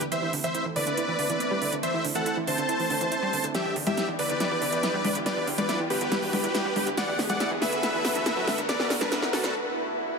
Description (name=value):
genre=uplifting trance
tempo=140 BPM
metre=4/4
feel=straight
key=E minor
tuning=A4 = 440 Hz
part: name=dense compressed supersaw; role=melody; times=0.0-9.5 s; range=D4 to A5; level=-27 LUFS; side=equal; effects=cassette tape, tape echo
part: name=analog string pad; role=sustained chords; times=0.0-10.2 s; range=D3 to G4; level=-34 LUFS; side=equal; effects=ensemble chorus
part: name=analog pluck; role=arpeggios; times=0.0-9.5 s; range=D3 to E4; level=-35 LUFS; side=right 4 dB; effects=chorus, tape echo
part: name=tight sequencer bass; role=bass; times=0.0-9.5 s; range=A1 to E2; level=-42 LUFS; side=left 1 dB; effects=none
part: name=big-room dance drum kit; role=drums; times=0.0-9.5 s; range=congas, hi-hat, snare drum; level=-30 LUFS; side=equal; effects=none
part: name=riser and swell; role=sound effects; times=0.1-10.2 s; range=none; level=-35 LUFS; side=right 1 dB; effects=none
room=moderate huge ambient reverb, RT60 4.4 s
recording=high-pass filter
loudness=-24 LUFS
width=side -4 dB against mid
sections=0.0-10.2 A section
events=build-up 0.0-10.2; filter sweep on synth pluck 0.0-10.2; riser 0.1-9.5; drum fill 3.5-9.5; break 9.5-10.2; swell 9.5-10.2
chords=0.1 Am; 3.5 Em7; 7.0 D6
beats=| 0.12 0.55 0.97 1.40 | 1.83 2.26 2.69 3.12 | 3.55 3.97 4.40 4.83 | 5.26 5.69 6.12 6.55 | 6.97 7.40 7.83 8.26 | 8.69 9.12 9.55 9.97